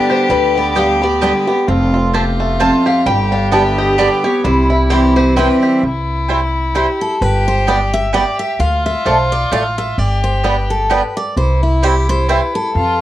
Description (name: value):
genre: bluegrass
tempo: 130 BPM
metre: 3/4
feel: swing 56% on 8ths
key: C major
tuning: A4 = 440 Hz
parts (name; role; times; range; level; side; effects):
- bluegrass banjo; melody; 0.0-12.4 s; D3 to G4; -20 LUFS; right 2 dB; none
- picked steel-string acoustic guitar; melody; 0.0-5.5 s; E4 to A5; -20 LUFS; left 3 dB; none
- clear fiddle; second line; 0.0-13.0 s; E4 to G4; -20 LUFS; left 2 dB; none
- picked steel-string acoustic guitar; accompaniment; 0.0-13.0 s; E2 to F5; -17 LUFS; equal; none
- upright bass; bass; 0.3-13.0 s; F1 to F2; -17 LUFS; equal; none
- mandolin; stabs; 0.8-12.4 s; A3 to A5; -18 LUFS; right 4 dB; none
room: moderate small room reverb, RT60 0.6 s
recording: worn, warbling old tape, cassette tape, warbly pitch drift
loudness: -12 LUFS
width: side -13 dB against mid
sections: 0.0-5.8 A section; 5.8-13.0 B section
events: steel-string acoustic guitar solo 5.8-13.0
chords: 0.0 G; 1.7 F; 3.1 Gadd9; 4.4 C; 7.2 G; 8.6 Dm; 10.0 G; 11.4 C